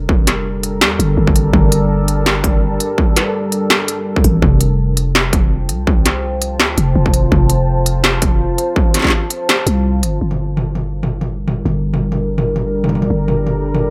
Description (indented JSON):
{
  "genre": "half-time drum and bass",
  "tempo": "166 BPM",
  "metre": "4/4",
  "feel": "swing 56% on 16ths, half-time",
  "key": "G minor",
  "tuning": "A4 = 440 Hz",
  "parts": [
    { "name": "deep dark ambient pad", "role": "sustained chords", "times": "0.0-13.9 s", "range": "G3 to A5", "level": "-23 LUFS", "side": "equal", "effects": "chorus, built-in reverb, vintage 12-bit sampler grit, sidechain pumping" },
    { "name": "growling 808-style bass", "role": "bass", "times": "0.0-13.9 s", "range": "F1 to E2", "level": "-19 LUFS", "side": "equal", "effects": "none" },
    { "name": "electronic kick drum", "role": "drums", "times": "0.1-9.1 s", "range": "none", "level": "-16 LUFS", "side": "equal", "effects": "distortion, overdrive" },
    { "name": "industrial drum kit", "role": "drums", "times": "0.3-13.8 s", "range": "hi-hat, snare drum, toms", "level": "-19 LUFS", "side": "equal", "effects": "overdrive" }
  ],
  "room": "light reverb",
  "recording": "none",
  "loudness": "-15 LUFS",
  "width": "mono",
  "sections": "0.0-10.2 A section; 10.2-13.9 B section",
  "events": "break 9.8-10.2",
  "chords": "0.0 Gm7; 4.4 Fadd9; 10.2 Gm"
}